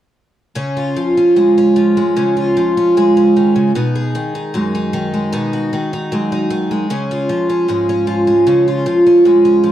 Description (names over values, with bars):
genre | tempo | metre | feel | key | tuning
folk, solo fingerstyle acoustic guitar | 76 BPM | 4/4 | rubato | Db mixolydian | A4 = 440 Hz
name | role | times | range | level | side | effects
picked twelve-string acoustic guitar | solo | 0.6-9.7 s | Gb2 to Ab4 | -12 LUFS | equal | none
room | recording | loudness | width
light reverb | dark, warm production | -12 LUFS | side -11 dB against mid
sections
0.6-9.7 A section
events
none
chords
0.6 Db; 3.8 Cb6; 6.9 Db